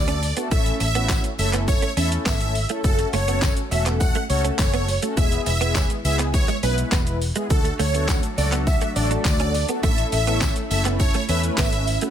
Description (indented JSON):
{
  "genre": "dance-pop",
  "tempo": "103 BPM",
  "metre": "4/4",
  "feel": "straight",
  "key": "A major",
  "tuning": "A4 = 440 Hz",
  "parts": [
    { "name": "supersaw chords", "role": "melody", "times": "0.0-12.0 s", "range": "A4 to F#5", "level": "-26 LUFS", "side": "right 2 dB", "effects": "phaser" },
    { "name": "mellow synth brass", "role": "accompaniment", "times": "0.0-12.1 s", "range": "G#3 to B4", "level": "-28 LUFS", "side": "left 1 dB", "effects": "chorus, sidechain pumping" },
    { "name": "vintage muted fingered electric bass", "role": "bass", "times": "0.0-12.0 s", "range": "E1 to E2", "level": "-24 LUFS", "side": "equal", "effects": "sidechain pumping" },
    { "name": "impact", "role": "sound effects", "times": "0.0-0.5 s", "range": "none", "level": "barely audible", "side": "none", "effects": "none" },
    { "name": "direct-recorded clean electric guitar", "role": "riff", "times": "0.1-12.1 s", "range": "G#3 to D4", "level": "-30 LUFS", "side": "right 6 dB", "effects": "ensemble chorus" },
    { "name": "pop drum kit", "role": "drums", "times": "0.1-12.1 s", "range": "handclaps, hi-hat, kick drum, shaker, snare drum", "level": "-23 LUFS", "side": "equal", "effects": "none" },
    { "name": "tambourine", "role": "percussion", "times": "0.2-12.0 s", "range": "none", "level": "-38 LUFS", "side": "left 7 dB", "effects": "none" },
    { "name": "chorused pulse-width pad", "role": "sustained chords", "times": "7.9-12.1 s", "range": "F#3 to A4", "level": "-32 LUFS", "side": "equal", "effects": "sidechain pumping" }
  ],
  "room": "little or no reverb",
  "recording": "none",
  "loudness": "-19 LUFS",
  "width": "side -9 dB against mid",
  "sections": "0.0-12.1 A section",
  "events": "impact 0.0-0.5",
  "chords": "0.0 D; 0.5 A; 2.8 F#m; 5.2 E; 7.5 D; 9.8 A",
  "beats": "| 0.51 1.09 1.68 2.26 | 2.84 3.42 4.01 4.59 | 5.17 5.75 6.34 6.92 | 7.50 8.09 8.67 9.25 | 9.83 10.42 11.00 11.58"
}